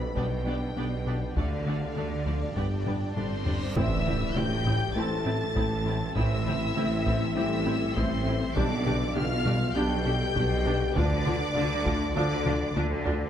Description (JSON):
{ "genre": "cinematic, hybrid orchestral and electronic film score", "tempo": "100 BPM", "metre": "4/4", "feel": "straight", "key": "A minor", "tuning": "A4 = 440 Hz", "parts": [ { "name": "warm symphonic violin section", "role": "melody", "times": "0.0-12.8 s", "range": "F5 to A6", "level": "-37 LUFS", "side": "left 2 dB", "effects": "none" }, { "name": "mellow French horn section", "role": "sustained chords", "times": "0.0-12.8 s", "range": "C4 to B4", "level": "-36 LUFS", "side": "left 4 dB", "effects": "none" }, { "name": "mellow trombone section", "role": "sustained chords", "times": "0.0-12.4 s", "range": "D3 to D4", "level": "-40 LUFS", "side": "right 4 dB", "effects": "none" }, { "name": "swarming drone", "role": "sustained chords", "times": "0.0-13.3 s", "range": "E3 to E5", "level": "-38 LUFS", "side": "left 2 dB", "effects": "built-in reverb" }, { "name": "thumb-piano-like synth pluck", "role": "arpeggios", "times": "0.0-12.9 s", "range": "D3 to E4", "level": "-38 LUFS", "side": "right 3 dB", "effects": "none" }, { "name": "round analog bass", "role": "riff", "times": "0.0-13.2 s", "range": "D2 to B3", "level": "-33 LUFS", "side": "left 2 dB", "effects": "none" }, { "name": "mellow tuba", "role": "bass", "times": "0.0-13.3 s", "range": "G1 to D2", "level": "-35 LUFS", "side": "right 3 dB", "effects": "none" }, { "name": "rich symphonic cello section", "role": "bass", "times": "0.0-13.3 s", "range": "G2 to D3", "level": "-35 LUFS", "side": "right 2 dB", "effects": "none" }, { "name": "rich symphonic double bass section", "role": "bass", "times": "0.0-13.3 s", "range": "G1 to D2", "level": "-34 LUFS", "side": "right 2 dB", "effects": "none" }, { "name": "felt-muted upright piano", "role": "texture", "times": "0.0-13.3 s", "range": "G3 to B4", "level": "-43 LUFS", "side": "left 4 dB", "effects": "none" }, { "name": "rich symphonic violin section", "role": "second line", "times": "0.2-12.8 s", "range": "G4 to A5", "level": "-36 LUFS", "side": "left 2 dB", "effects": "none" }, { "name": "rich symphonic viola section", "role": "accompaniment", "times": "0.2-13.1 s", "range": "G3 to G4", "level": "-36 LUFS", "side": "equal", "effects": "none" }, { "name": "taiko ensemble", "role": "drums", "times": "0.2-13.3 s", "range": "none", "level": "-34 LUFS", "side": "equal", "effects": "none" }, { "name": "reverse cymbal and impact", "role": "sound effects", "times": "3.5-6.2 s", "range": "none", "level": "-38 LUFS", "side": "equal", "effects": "none" } ], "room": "moderate scoring stage reverb, RT60 1.7 s", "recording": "none", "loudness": "-25 LUFS", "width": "side -9 dB against mid", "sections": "0.0-3.8 A section; 3.8-13.3 B section", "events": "drum fill 2.9-3.8, 12.5-13.3; reverse cymbal 3.5-3.8; impact 3.8-6.2", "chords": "0.0 G/B; 1.4 Dm; 2.6 G; 3.8 Am; 8.6 G/B; 11.0 Dm" }